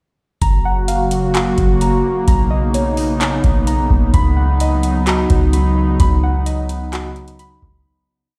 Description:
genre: hip hop, atmospheric cloud-rap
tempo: 129 BPM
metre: 4/4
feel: half-time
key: unclear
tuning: A4 = 440 Hz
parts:
  - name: airy breathy pad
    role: sustained chords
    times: 0.4-7.8 s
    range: C#3 to F#4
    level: -22 LUFS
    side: equal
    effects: chorus
  - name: muted felt-like synth keys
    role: arpeggios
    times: 0.4-7.9 s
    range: D#4 to B5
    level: -25 LUFS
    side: equal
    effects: chorus, low-pass filter, delay
  - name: soft 808-style bass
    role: bass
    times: 0.4-7.8 s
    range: F#1 to C#2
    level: -19 LUFS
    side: equal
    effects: none
  - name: booming analog drum machine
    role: drums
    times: 0.4-7.8 s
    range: handclaps, hi-hat, kick drum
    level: -20 LUFS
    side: equal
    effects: none
room: digital ambience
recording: played on a big sound system in a bare room, stone room reverb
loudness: -16 LUFS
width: mono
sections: 0.4-7.9 verse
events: fade-out 6.0-7.9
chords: 0.4 F#maj7; 2.3 Bmaj9; 4.1 C#9sus4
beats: | 0.42 0.88 1.35 1.81 | 2.28 2.74 3.21 3.67 | 4.14 4.60 5.07 5.53 | 6.00 6.46 6.93 7.39

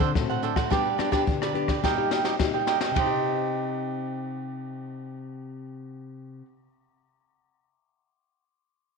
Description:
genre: samba and choro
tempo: 107 BPM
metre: 4/4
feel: straight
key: C harmonic minor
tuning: A4 = 440 Hz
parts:
  - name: cavaquinho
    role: accompaniment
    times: 0.0-6.5 s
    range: D4 to G5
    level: -28 LUFS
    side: right 12 dB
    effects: none
  - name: nylon-string guitar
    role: accompaniment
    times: 0.0-6.6 s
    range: A2 to A4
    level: -30 LUFS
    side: left 7 dB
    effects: none
  - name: jazz brush drum kit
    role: drums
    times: 0.0-3.1 s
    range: hi-hat, kick drum, ride cymbal, rim click, snare drum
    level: -28 LUFS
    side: left 3 dB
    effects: none
room: wet echo chamber reverb, RT60 1.6 s, studio reverb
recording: 1960s-style stereo with parts hard left and right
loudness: -24 LUFS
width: side -4 dB against mid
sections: 0.0-3.0 A section; 3.0-5.2 B section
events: drum fill 1.8-3.0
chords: 0.0 D7; 0.7 G; 1.8 Eb/G; 3.0 Cm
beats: 0.15 | 0.71 1.28 1.84 2.40 | 2.96 3.52 4.08 4.65

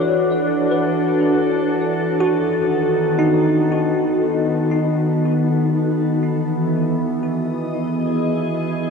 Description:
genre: ambient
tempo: free time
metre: none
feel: none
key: unclear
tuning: A4 = 439 Hz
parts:
  - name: glassy FM pad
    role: sustained chords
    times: 0.0-8.9 s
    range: D#3 to D#5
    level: -18 LUFS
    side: equal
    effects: ensemble chorus, built-in reverb
  - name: bell-like tine electric piano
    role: arpeggios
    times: 0.0-8.9 s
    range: D#4 to D5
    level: -22 LUFS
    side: equal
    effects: analog chorus, ping-pong delay
room: wet huge ambient reverb, RT60 8.4 s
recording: cassette tape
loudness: -16 LUFS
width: side -5 dB against mid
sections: 0.0-6.2 A section; 6.2-8.9 B section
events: none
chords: 0.0 Dadd9; 2.2 B7; 6.2 Emaj7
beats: free time

